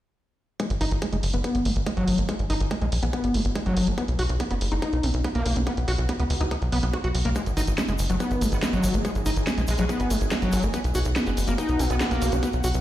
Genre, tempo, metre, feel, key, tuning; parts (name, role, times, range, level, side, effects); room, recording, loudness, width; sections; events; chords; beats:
psychedelic trance; 142 BPM; 4/4; straight; G# minor; A4 = 440 Hz
overdriven acid bass; riff; 0.6-12.7 s; F#3 to F#4; -27 LUFS; equal; distortion, auto-pan, sidechain pumping, tape echo
drum and bass drum kit; drums; 0.6-12.8 s; hi-hat, snare drum; -32 LUFS; equal
electronic kick drum; drums; 0.6-12.5 s; -31 LUFS; equal; high-pass filter on kick
airy breathy pad; texture; 0.6-12.8 s; B3 to G#5; -35 LUFS; right 1 dB; chorus, phaser, sidechain pumping
tight sequencer bass; bass; 0.7-12.8 s; F#1 to C#2; -25 LUFS; equal
egg shaker; percussion; 7.4-12.8 s; -41 LUFS; left 2 dB
metallic wobble bass; second line; 8.5-12.1 s; G#3 to B3; -38 LUFS; right 4 dB; chorus, sidechain pumping, high-pass filter, digital delay
light reverb; played on a big sound system in a bare room, stone room reverb; -22 LUFS; side -13 dB against mid
0.6-12.8 A section
fade-in on analog synth pad 0.6-12.8; filter sweep on acid bass 0.6-12.8
0.6 G#5; 4.0 B5; 7.4 G#5; 10.7 B5
| 0.60 1.02 1.44 1.86 | 2.29 2.71 3.13 3.56 | 3.98 4.40 4.82 5.25 | 5.67 6.09 6.51 6.93 | 7.36 7.78 8.20 8.62 | 9.05 9.47 9.89 10.31 | 10.74 11.16 11.58 12.01 | 12.43